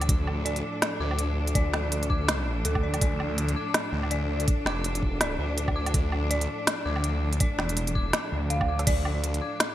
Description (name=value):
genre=half-time drum and bass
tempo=164 BPM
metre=4/4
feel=swing 57% on 16ths, half-time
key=D minor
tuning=A4 = 440 Hz
part: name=bright studio cello section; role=sustained chords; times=0.0-9.7 s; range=A2 to A4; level=-33 LUFS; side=equal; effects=sidechain pumping
part: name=dark detuned synth bell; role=arpeggios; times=0.0-9.7 s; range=A4 to D6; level=-34 LUFS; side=left 1 dB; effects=chorus, phaser, digital delay
part: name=phased detuned saw bass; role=bass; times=0.0-9.4 s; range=E1 to D2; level=-28 LUFS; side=equal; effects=phaser
part: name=organic electronic drum kit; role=drums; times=0.0-9.7 s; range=crash cymbal, hi-hat, snare drum, woodblock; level=-28 LUFS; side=equal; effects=small room reverb, gated reverb
part: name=electronic kick drum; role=drums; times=0.1-9.0 s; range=none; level=-26 LUFS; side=equal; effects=small room reverb
room=light reverb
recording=bright 1980s-style digital production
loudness=-24 LUFS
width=side -13 dB against mid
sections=0.0-9.7 A section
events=none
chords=0.0 Dm